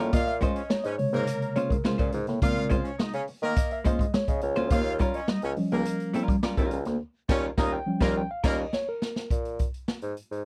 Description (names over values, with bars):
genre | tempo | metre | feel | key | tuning
funk | 105 BPM | 4/4 | straight | Bb dorian | A4 = 439 Hz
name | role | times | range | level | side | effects
hollow-body jazz guitar | accompaniment | 0.0-8.6 s | G3 to C5 | -33 LUFS | equal | none
electric guitar with an envelope filter | riff | 0.0-7.0 s | G3 to Bb3 | -34 LUFS | equal | harmonic tremolo
mellow reed electric piano | stabs | 0.0-9.3 s | C3 to G5 | -33 LUFS | equal | fast tremolo
warm bassoon | bass | 0.0-10.4 s | Db2 to Eb3 | -33 LUFS | equal | none
warm horn section | second line | 0.1-8.6 s | Bb3 to F5 | -35 LUFS | equal | none
swinging big-band drum kit | drums | 0.1-10.4 s | crash cymbal, hi-hat, kick drum, snare drum | -30 LUFS | equal | none
room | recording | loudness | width
little or no reverb | dry, close 1970s-style studio recording | -27 LUFS | mono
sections
0.0-9.3 A section; 9.3-10.4 B section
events
reed electric piano solo 0.0-9.3; band accent 7.0-9.3; drum fill 8.2-9.3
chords
0.1 Bbm9; 4.7 Eb9; 9.3 Bb7(no3)